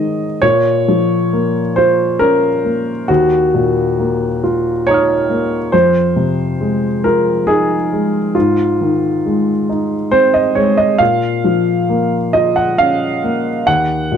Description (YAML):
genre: neoclassical minimalist piano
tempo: 68 BPM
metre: 3/4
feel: rubato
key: Bb minor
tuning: A4 = 441 Hz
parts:
  - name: warm upright piano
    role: solo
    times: 0.0-14.2 s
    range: Eb2 to F6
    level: -12 LUFS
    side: equal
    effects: none
room: moderate studio ambience, RT60 0.5 s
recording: dark, warm production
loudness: -12 LUFS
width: side -8 dB against mid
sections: 0.4-14.2 A section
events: none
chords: 0.4 Bbm; 3.1 Ebmadd9; 5.7 Fm7; 8.3 Ab; 11.0 Bbm; 13.7 Ebm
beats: | 0.42 1.32 2.20 | 3.09 3.98 4.87 | 5.73 6.60 7.47 | 8.35 9.24 10.12 | 11.00 11.88 12.77 | 13.66